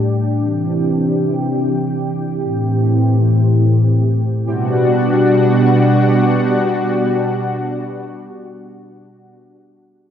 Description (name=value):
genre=synthwave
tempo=free time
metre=none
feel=none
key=G major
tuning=A4 = 440 Hz
part: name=analog string pad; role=sustained chords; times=0.0-9.3 s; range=A2 to G4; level=-14 LUFS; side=equal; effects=ensemble chorus
room=wet plate reverb, RT60 2.4 s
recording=bright 1980s-style digital production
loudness=-13 LUFS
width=side -9 dB against mid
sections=0.0-4.5 A section; 4.5-8.6 B section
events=filter sweep on analog synth pad 0.0-4.5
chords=0.4 Cadd9; 2.4 Am7; 4.5 Gmaj7